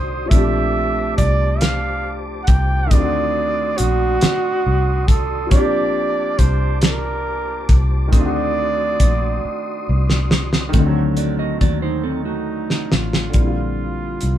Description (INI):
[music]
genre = slow six-eight R&B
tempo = 46 BPM (dotted quarters)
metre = 6/8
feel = straight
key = unclear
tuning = A4 = 440 Hz
[part]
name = warm flugelhorn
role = melody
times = 0.0-14.4 s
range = Eb4 to G5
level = -22 LUFS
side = right 3 dB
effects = none
[part]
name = clear baby grand piano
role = accompaniment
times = 0.0-14.4 s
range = D3 to G4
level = -24 LUFS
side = equal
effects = none
[part]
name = mellow tonewheel organ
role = sustained chords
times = 0.0-10.7 s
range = F#4 to Eb6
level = -30 LUFS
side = left 2 dB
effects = chorus vibrato
[part]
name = fingered electric bass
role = bass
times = 0.0-14.4 s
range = A1 to Eb2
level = -21 LUFS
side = equal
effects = none
[part]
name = cloth-damped thuddy drum kit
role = drums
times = 0.3-14.4 s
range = hi-hat, kick drum, snare drum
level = -16 LUFS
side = equal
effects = none
[part]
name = mellow electric guitar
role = second line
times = 11.2-13.3 s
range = A3 to Eb5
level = -25 LUFS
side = right 5 dB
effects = none
[sound]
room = light reverb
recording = band playing live in one room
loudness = -16 LUFS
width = side -11 dB against mid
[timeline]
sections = 0.0-10.7 A section; 10.7-13.3 B section; 13.3-14.4 C section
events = drum fill 9.4-10.7, 12.0-13.3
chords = 0.3 Bbmaj13; 2.9 D7b9; 5.5 Bbmaj13; 8.1 D7b9; 13.3 Bb69